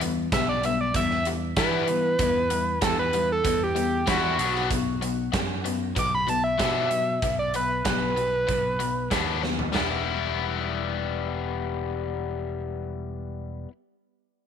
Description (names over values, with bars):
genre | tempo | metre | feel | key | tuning
indie rock | 95 BPM | 4/4 | straight | E minor | A4 = 441 Hz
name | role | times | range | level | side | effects
biting overdriven guitar | riff | 0.0-13.7 s | F#3 to E4 | -29 LUFS | left 12 dB | none
modern bright picked electric bass | bass | 0.0-13.7 s | E1 to E3 | -32 LUFS | right 2 dB | none
big rock drum kit | drums | 0.0-9.9 s | hi-hat, kick drum, snare drum, toms | -29 LUFS | right 2 dB | none
overdriven synth lead | melody | 0.3-9.7 s | F#4 to D6 | -26 LUFS | right 1 dB | tape echo
room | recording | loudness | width
little or no reverb | 1960s-style stereo | -23 LUFS | side -8 dB against mid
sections
0.0-9.7 A section; 9.7-12.3 B section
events
analog synth lead solo 0.0-9.7; drum fill 9.4-9.7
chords
0.0 Em; 4.4 Bm; 9.7 Em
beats
0.32 0.94 1.57 | 2.19 2.82 3.44 4.07 | 4.70 5.33 5.96 6.59 | 7.22 7.85 8.48 9.11 | 9.74 10.37 11.00 11.63